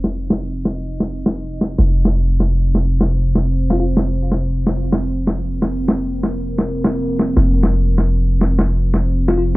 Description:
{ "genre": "half-time drum and bass", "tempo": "172 BPM", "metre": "4/4", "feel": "half-time", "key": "unclear", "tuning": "A4 = 440 Hz", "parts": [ { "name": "deep dark ambient pad", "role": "sustained chords", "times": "0.0-9.6 s", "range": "C4 to Eb5", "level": "-24 LUFS", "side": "equal", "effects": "chorus, built-in reverb" }, { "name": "long sustained 808-style bass", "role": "bass", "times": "0.0-9.6 s", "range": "F1", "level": "-18 LUFS", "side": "equal", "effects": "none" }, { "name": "electronic snare drum", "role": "drums", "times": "0.0-9.4 s", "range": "none", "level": "-18 LUFS", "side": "equal", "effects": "overdrive, low-pass filter on snare, cassette tape, low-pass filter on hats" }, { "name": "bell-like FM electric piano", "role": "melody", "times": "3.7-3.8, 9.3-9.4 s", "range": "F4", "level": "-22 LUFS", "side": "left 2 dB", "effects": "chorus, phaser, cassette tape, tape echo" } ], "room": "light reverb", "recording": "home recording on cassette, low-pass filter", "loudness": "-15 LUFS", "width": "side -20 dB against mid", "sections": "0.0-9.6 A section", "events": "filter sweep on ambient pad 0.0-9.6; filter sweep 0.0-9.6", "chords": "0.0 F5" }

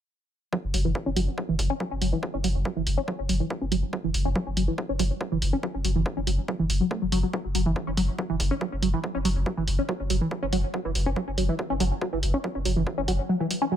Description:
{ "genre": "driving peak-time techno", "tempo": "141 BPM", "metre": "4/4", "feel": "straight", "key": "unclear", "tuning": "A4 = 439 Hz", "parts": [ { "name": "tight sequenced synth", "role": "riff", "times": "0.5-13.8 s", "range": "E3 to C#4", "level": "-27 LUFS", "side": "right 1 dB", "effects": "chorus, tube saturation, sidechain pumping, tape echo" }, { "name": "electronic kick drum", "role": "drums", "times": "0.5-13.0 s", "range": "none", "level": "-33 LUFS", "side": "equal", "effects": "high-pass filter on kick, studio ambience" }, { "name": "saturated sub bass", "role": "bass", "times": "0.6-13.2 s", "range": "F#1", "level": "-27 LUFS", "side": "equal", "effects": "overdrive, sidechain pumping, low-pass filter" }, { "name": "electronic hi-hat", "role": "drums", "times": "0.7-13.6 s", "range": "none", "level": "-32 LUFS", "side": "right 1 dB", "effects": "sidechain pumping on hats, studio ambience" } ], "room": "light reverb, digital ambience", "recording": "none", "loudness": "-24 LUFS", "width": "side -10 dB against mid", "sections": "0.5-13.8 A section", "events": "filter sweep on synth arpeggio sound 0.5-13.8; kick drops out 13.3-13.8", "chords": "none" }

